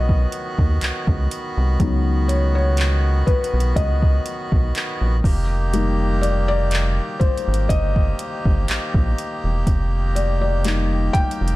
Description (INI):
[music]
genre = contemporary R&B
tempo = 61 BPM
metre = 4/4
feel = swing 54% on 16ths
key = unclear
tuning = A4 = 439 Hz
[part]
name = felt-muted upright piano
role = accompaniment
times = 0.0-11.6 s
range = Gb3 to G5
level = -25 LUFS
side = left 4 dB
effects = none
[part]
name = accordion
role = sustained chords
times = 0.0-11.6 s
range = Eb3 to G4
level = -28 LUFS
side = equal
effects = none
[part]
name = rubbery square bass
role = bass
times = 0.0-11.6 s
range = E1 to Eb2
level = -19 LUFS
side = equal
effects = none
[part]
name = smooth R&B drum kit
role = drums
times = 0.1-11.6 s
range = handclaps, hi-hat, kick drum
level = -21 LUFS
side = equal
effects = none
[sound]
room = little or no reverb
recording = dark, warm production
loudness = -17 LUFS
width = side -18 dB against mid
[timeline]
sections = 0.0-11.6 A section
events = felt piano solo 0.0-11.6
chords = 0.0 Db9sus4; 5.2 F9sus4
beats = 0.81 | 1.80 2.78 3.77 4.75 | 5.73 6.72 7.70 8.68 | 9.67 10.65